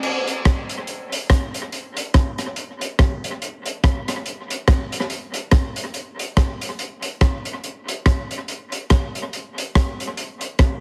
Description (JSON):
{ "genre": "ska", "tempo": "142 BPM", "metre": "4/4", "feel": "swing 58% on 8ths", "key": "none", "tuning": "none", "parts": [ { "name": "crunchy breakbeat drum kit", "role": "drums", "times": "0.0-10.7 s", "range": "crash cymbal, hi-hat, kick drum, rim click", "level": "-22 LUFS", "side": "equal", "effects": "dub echo" } ], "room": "light reverb", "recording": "heavily compressed radio sound", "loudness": "-22 LUFS", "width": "mono", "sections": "0.0-10.8 A section", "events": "none", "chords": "none", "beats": "| 0.03 0.46 0.88 1.30 | 1.72 2.15 2.57 2.99 | 3.42 3.84 4.26 4.68 | 5.11 5.53 5.95 6.37 | 6.80 7.22 7.64 8.06 | 8.48 8.91 9.33 9.75 | 10.17 10.59" }